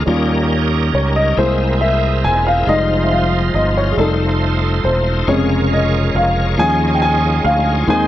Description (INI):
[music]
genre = slow gospel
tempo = 46 BPM (dotted quarters)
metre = 6/8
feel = straight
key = unclear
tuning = A4 = 440 Hz
[part]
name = warm upright piano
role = accompaniment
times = 0.0-8.1 s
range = C3 to Ab5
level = -16 LUFS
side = left 2 dB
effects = none
[part]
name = bright tonewheel organ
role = sustained chords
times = 0.0-8.1 s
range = F3 to Db5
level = -20 LUFS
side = right 1 dB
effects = slow rotary speaker, chorus vibrato
[part]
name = fingered electric bass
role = bass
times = 0.0-8.1 s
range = E1 to Eb2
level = -17 LUFS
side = right 1 dB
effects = none
[sound]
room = moderate large studio reverb, RT60 1.4 s, studio ambience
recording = none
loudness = -13 LUFS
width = side -13 dB against mid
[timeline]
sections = 0.0-8.1 A section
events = upright piano solo 0.0-8.1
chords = 0.1 Eb7; 1.4 C7b13; 2.7 Fm7; 4.0 F7; 5.3 Bbm7/F; 6.6 Eb9sus4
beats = | 0.07 1.37 | 2.68 3.98 | 5.28 6.59 | 7.89